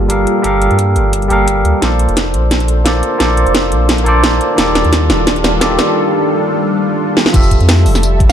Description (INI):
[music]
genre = liquid drum and bass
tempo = 174 BPM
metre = 4/4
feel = swing 53% on 16ths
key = unclear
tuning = A4 = 440 Hz
[part]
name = barky tine electric piano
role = accompaniment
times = 0.0-8.3 s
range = Eb3 to F5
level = -15 LUFS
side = equal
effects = ping-pong delay
[part]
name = lush unison pad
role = sustained chords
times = 0.0-8.3 s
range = G3 to E5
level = -19 LUFS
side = equal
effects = chorus, phaser, sidechain pumping
[part]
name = saturated sub bass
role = bass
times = 0.0-8.3 s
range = Eb1 to G2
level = -14 LUFS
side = equal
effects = tube saturation
[part]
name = drum and bass drum kit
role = drums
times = 0.1-8.3 s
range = crash cymbal, hi-hat, snare drum, tambourine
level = -15 LUFS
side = equal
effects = none
[part]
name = electronic kick drum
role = drums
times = 0.1-8.3 s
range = none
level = -13 LUFS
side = equal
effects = high-pass filter on kick, high-pass filter on room
[sound]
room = moderate digital room reverb, RT60 1.0 s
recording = dark, warm production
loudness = -10 LUFS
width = side -9 dB against mid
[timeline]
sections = 0.0-7.3 A section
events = build-up 0.0-7.3; filter sweep on analog synth pad 0.0-7.3; drum fill 1.8-6.0, 7.2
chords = 0.0 Gm7; 1.8 Bbmaj9; 4.6 Ebmaj9#11; 7.3 Fmaj9